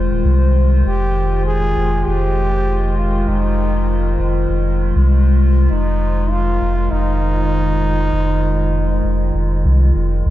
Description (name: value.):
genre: ambient dub.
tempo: 99 BPM.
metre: 4/4.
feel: straight.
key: F minor.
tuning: A4 = 438 Hz.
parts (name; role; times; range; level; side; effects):
warbly tape-like pad; sustained chords; 0.0-10.3 s; Eb3 to C5; -21 LUFS; left 2 dB; chorus, built-in reverb.
warm sub bass; bass; 0.0-10.3 s; Eb1 to C2; -16 LUFS; equal; none.
warm trombone; melody; 0.9-9.9 s; Eb4 to Ab4; -23 LUFS; equal; dub echo.
room: light reverb, small room ambience.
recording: nothing above 7.8 kHz.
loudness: -14 LUFS.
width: side -14 dB against mid.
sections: 0.0-10.3 A section.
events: none.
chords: 0.0 Fm7.